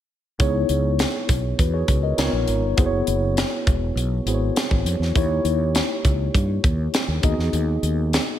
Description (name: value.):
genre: polished 1980s jazz-funk pop.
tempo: 101 BPM.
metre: 4/4.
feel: straight.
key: unclear.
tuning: A4 = 441 Hz.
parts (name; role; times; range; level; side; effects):
tine electric piano; accompaniment; 0.4-8.4 s; A#3 to D#5; -24 LUFS; left 2 dB; medium stereo tremolo, wide subtle chorus.
mellow fretless electric bass; bass; 0.4-8.2 s; E1 to G2; -23 LUFS; equal; none.
tight funk drum kit; drums; 0.4-8.3 s; hi-hat, kick drum, snare drum; -22 LUFS; equal; gated reverb.
room: light reverb.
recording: none.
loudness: -19 LUFS.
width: side -11 dB against mid.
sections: 0.4-8.4 A section.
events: none.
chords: 0.4 C#m9; 2.2 C#13; 2.8 F#9sus4; 5.2 D#7b9; 7.2 G#m7.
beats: | 0.40 0.99 1.59 2.18 | 2.77 3.37 3.96 4.56 | 5.15 5.75 6.34 6.93 | 7.53 8.12.